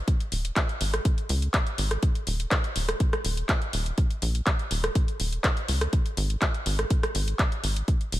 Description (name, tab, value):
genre	progressive house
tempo	123 BPM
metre	4/4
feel	straight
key	unclear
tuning	A4 = 440 Hz
part	tight sequencer bass	bass	0.0-8.2 s	D#1 to C#2	-27 LUFS	equal	sidechain pumping
part	electronic kick drum	drums	0.1-8.0 s	none	-24 LUFS	equal	none
part	house drum kit	drums	0.1-8.2 s	handclaps, hi-hat, rim click	-29 LUFS	equal	none
room	little or no reverb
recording	none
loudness	-24 LUFS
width	side -15 dB against mid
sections	0.0-8.2 A section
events	none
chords	none